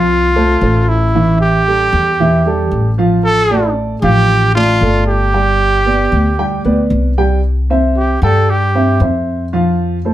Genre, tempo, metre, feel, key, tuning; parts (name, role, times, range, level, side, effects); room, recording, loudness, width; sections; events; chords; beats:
latin, Cuban son and guajira; 114 BPM; 4/4; straight; C major; A4 = 440 Hz
breathy trumpet; melody; 0.0-9.0 s; E4 to A4; -14 LUFS; right 1 dB
dark grand piano; arpeggios; 0.0-10.1 s; E3 to G5; -15 LUFS; right 1 dB
upright bass; bass; 0.0-10.1 s; G1 to G2; -15 LUFS; left 1 dB
wet small room reverb, RT60 0.6 s; heard from further back in the room; -11 LUFS; side -13 dB against mid
0.0-7.4 A section; 7.4-10.1 B section
trumpet solo 7.4-10.1
0.0 F; 1.1 A5; 3.2 Dm/A; 5.3 G; 7.4 C; 9.5 F
0.09 0.62 | 1.14 1.67 2.19 2.72 | 3.24 3.77 4.29 4.81 | 5.34 5.86 6.39 6.91 | 7.43 7.96 8.48 9.01 | 9.53 10.05